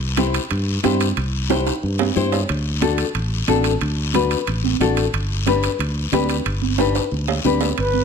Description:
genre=latin, cumbia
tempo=182 BPM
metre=4/4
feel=straight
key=G major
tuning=A4 = 440 Hz
part: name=fingered electric bass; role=bass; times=0.0-8.0 s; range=G1 to G2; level=-22 LUFS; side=equal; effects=none
part: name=nylon-string guitar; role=accompaniment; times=0.2-7.7 s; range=D4 to C5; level=-21 LUFS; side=left 7 dB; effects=none
part: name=congas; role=percussion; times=0.2-8.0 s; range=none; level=-25 LUFS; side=right 13 dB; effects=none
part: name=guiro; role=percussion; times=0.2-8.0 s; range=none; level=-30 LUFS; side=left 8 dB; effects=none
part: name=timbales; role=percussion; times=0.2-7.9 s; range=none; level=-26 LUFS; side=right 10 dB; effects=none
part: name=breathy concert flute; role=melody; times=7.8-8.0 s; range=B4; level=-20 LUFS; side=right 1 dB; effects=none
room=moderate large studio reverb, RT60 1.0 s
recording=lossy compression artefacts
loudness=-18 LUFS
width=side -6 dB against mid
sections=0.0-7.8 A section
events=drum fill 1.5-2.5, 6.8-7.8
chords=0.0 C; 2.5 D; 5.1 G

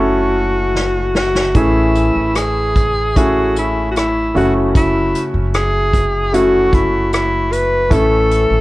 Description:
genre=pop ballad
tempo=76 BPM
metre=4/4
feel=straight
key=unclear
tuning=A4 = 439 Hz
part: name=bright alto saxophone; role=melody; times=0.0-8.6 s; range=E4 to B4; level=-16 LUFS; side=equal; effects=none
part: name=clear grand piano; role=accompaniment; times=0.0-8.6 s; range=A2 to A4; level=-18 LUFS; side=equal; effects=none
part: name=upright bass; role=bass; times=0.0-8.6 s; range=F#1 to A1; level=-20 LUFS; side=equal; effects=none
part: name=unplugged drum kit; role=drums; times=0.8-8.5 s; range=hi-hat, kick drum, rim click, snare drum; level=-18 LUFS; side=equal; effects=none
room=light reverb, studio reverb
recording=worn, warbling old tape, cassette tape, warbly pitch drift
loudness=-12 LUFS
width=side -18 dB against mid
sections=0.0-8.6 A section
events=drum fill 0.7-1.6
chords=0.0 F#m7; 1.6 Amaj7; 4.4 F#m7; 7.9 A

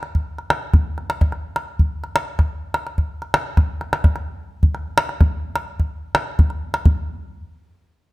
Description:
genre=west african traditional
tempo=85 BPM (dotted quarters)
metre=12/8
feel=straight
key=none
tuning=none
part: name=calabash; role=percussion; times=0.0-7.1 s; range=none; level=-18 LUFS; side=equal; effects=none
room=moderate recital hall reverb, RT60 1.3 s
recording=close, detailed microphones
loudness=-18 LUFS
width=side -19 dB against mid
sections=0.0-6.9 A section; 6.9-8.1 B section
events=none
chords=none

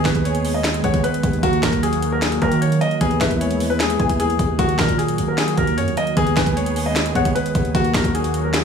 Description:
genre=hip hop, trap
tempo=152 BPM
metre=4/4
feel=half-time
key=Eb phrygian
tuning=A4 = 440 Hz
part: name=warm concert grand piano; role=melody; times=0.0-8.6 s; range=Gb4 to Eb5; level=-22 LUFS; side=left 2 dB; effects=tape echo
part: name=muted felt-like synth keys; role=accompaniment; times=0.0-8.6 s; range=Eb3 to Cb5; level=-22 LUFS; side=right 4 dB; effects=chorus
part: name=warm analog pad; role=sustained chords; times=0.0-8.6 s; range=Eb3 to Ab4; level=-27 LUFS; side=left 2 dB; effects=chorus
part: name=growling 808-style bass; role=bass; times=0.0-8.6 s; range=Db2 to Eb3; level=-24 LUFS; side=equal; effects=none
part: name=warbly dusty pluck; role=second line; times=0.1-7.7 s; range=E5 to Ab5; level=-30 LUFS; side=left 5 dB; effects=chorus, tape echo
part: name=trap drum kit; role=drums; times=0.1-8.6 s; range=finger snaps, hi-hat, kick drum, snare drum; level=-23 LUFS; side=equal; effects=none
room=digital ambience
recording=studio reverb, faint mains hum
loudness=-16 LUFS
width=side -6 dB against mid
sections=0.0-8.6 A section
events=none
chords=0.0 Abm/Eb; 1.4 Ebm; 3.0 E/Eb; 4.6 Ebm; 6.2 Abm/Eb; 7.7 Ebm

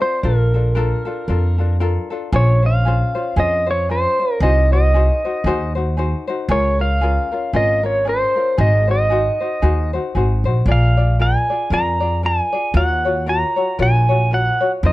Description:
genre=Hawaiian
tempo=115 BPM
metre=4/4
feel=swing 57% on 8ths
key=Bb minor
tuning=A4 = 440 Hz
part: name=pedal steel guitar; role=melody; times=0.0-14.9 s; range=Bb4 to Bb5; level=-19 LUFS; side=right 1 dB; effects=none
part: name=tenor ukulele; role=accompaniment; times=0.0-14.9 s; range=C4 to D5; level=-23 LUFS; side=left 3 dB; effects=none
part: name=upright bass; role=bass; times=0.2-14.9 s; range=Ab1 to F2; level=-17 LUFS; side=equal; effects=none
room=little or no reverb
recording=dry, close 1970s-style studio recording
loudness=-15 LUFS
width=side -17 dB against mid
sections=0.0-2.3 A section; 2.3-14.9 B section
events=none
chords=0.2 Bbmaj7; 2.3 Bbm9; 4.4 Ab7/C; 6.5 Db6; 8.6 Ab7; 10.7 Bb7; 12.8 Ebm9

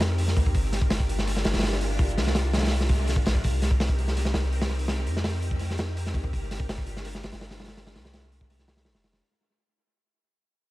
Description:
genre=drum and bass, jungle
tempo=166 BPM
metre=4/4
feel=straight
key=unclear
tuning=A4 = 440 Hz
part: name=soft string machine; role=sustained chords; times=0.0-9.2 s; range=C4 to Bb4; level=-36 LUFS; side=left 1 dB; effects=ensemble chorus
part: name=soft dub sub bass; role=bass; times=0.0-9.2 s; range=F1 to F2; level=-27 LUFS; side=equal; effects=tube saturation
part: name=crunchy breakbeat drum kit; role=drums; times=0.0-9.2 s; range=hi-hat, kick drum, snare drum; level=-26 LUFS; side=equal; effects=dub echo
room=small room reverb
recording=echo-heavy mix, vinyl crackle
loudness=-23 LUFS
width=side -18 dB against mid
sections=0.0-9.2 A section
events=drop 0.0-9.2; fade-out 3.4-9.2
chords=0.0 Cm7; 0.5 Gm7; 3.4 Cm7; 6.3 Gm7

